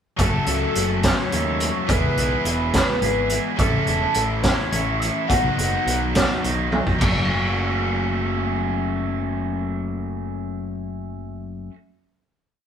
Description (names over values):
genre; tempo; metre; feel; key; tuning
indie rock; 70 BPM (dotted quarters); 6/8; straight; F# dorian; A4 = 439 Hz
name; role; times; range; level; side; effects
overdriven synth lead; melody; 0.2-6.4 s; A4 to F#5; -26 LUFS; equal; distortion, chorus, phaser
biting overdriven guitar; riff; 0.2-11.7 s; F#2 to F#4; -28 LUFS; left 6 dB; none
overdriven electric guitar; riff; 0.2-11.8 s; F#3 to A4; -27 LUFS; right 6 dB; none
growling picked electric bass; bass; 0.2-11.7 s; E1 to D#2; -27 LUFS; equal; overdrive
raw garage drum kit; drums; 0.2-7.1 s; crash cymbal, hi-hat, kick drum, snare drum, toms; -22 LUFS; equal; none
room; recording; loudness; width
light reverb; band playing live in one room; -19 LUFS; side -8 dB against mid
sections
0.2-7.0 interlude; 7.0-10.4 final chord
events
drum fill 6.7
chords
0.2 F#m; 1.9 E; 3.6 A; 5.3 B; 7.0 F#m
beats
| 0.19 1.04 | 1.89 2.74 | 3.59 4.44 | 5.29 6.14 | 7.00 7.85 | 8.70 9.56